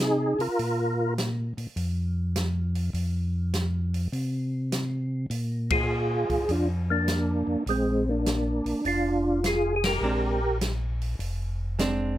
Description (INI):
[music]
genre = soul jazz organ trio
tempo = 102 BPM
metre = 4/4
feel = swing 68% on 8ths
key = unclear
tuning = A4 = 440 Hz
[part]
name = percussive tonewheel organ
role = melody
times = 0.0-1.1, 5.7-10.6 s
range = Ab3 to Bb4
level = -25 LUFS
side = equal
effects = slow rotary speaker, chorus vibrato
[part]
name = mellow tonewheel organ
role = bass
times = 0.0-12.2 s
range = F1 to C3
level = -28 LUFS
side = equal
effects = slow rotary speaker
[part]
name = open jazz drum kit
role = drums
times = 0.4-12.0 s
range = hi-hat, kick drum, ride cymbal, snare drum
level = -33 LUFS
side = equal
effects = none
[part]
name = archtop guitar, miked and amplified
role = accompaniment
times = 10.0-12.2 s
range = Ab3 to D4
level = -28 LUFS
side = right 2 dB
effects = none
[sound]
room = light reverb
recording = none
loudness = -24 LUFS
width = side -13 dB against mid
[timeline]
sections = 0.0-12.2 A section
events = band accent 5.6, 9.7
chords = 0.0 F7(no3); 0.6 Bb5; 2.9 F5; 5.3 Bb7